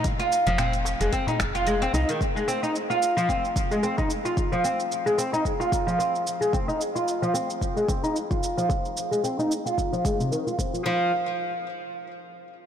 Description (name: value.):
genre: organic downtempo.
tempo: 111 BPM.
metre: 4/4.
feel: swing 56% on 16ths.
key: F minor.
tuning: A4 = 441 Hz.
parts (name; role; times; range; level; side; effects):
oud; arpeggios; 0.0-11.1 s; C3 to F4; -24 LUFS; equal; low-pass filter, digital delay.
electronic kick drum; drums; 0.0-10.7 s; none; -28 LUFS; equal; none.
organic electronic drum kit; drums; 0.0-10.8 s; cabasa, finger snaps, hi-hat; -34 LUFS; right 2 dB; soft clipping on snare.
woody FM bass; bass; 0.5-2.1 s; F1 to C2; -27 LUFS; equal; transformer saturation, sidechain pumping.
darbuka; percussion; 0.6-2.2 s; none; -35 LUFS; left 2 dB; none.
room: moderate huge ambient reverb, RT60 5.0 s.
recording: blown-out, overdriven recording, overdrive.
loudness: -23 LUFS.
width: side -9 dB against mid.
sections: 0.0-10.9 A section; 10.9-12.7 B section.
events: filter sweep on oud 0.0-10.9.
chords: 0.0 F5; 10.9 N.C..